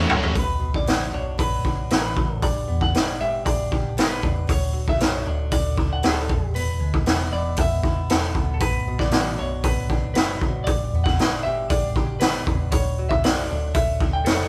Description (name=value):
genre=quiet-loud alternative rock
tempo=116 BPM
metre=4/4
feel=straight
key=B minor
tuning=A4 = 444 Hz
part: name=semi-hollow electric guitar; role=melody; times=0.0-14.5 s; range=A4 to G5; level=-31 LUFS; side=equal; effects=none
part: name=hollow-body short-scale picked electric bass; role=bass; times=0.0-14.5 s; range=B0 to E2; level=-29 LUFS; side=equal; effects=none
part: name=raw garage drum kit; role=drums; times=0.1-14.4 s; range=hi-hat, kick drum, snare drum, toms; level=-24 LUFS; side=equal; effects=none
part: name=picked swing-style acoustic guitar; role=arpeggios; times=0.3-14.5 s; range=D2 to G4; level=-36 LUFS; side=equal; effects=none
room=moderate large studio reverb, RT60 0.9 s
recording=band playing live in one room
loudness=-22 LUFS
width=mono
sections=0.4-14.5 A section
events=drum fill 0.0-0.4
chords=0.4 Bm; 2.4 G; 4.5 D; 6.3 E; 8.6 Bm; 10.7 G; 12.7 D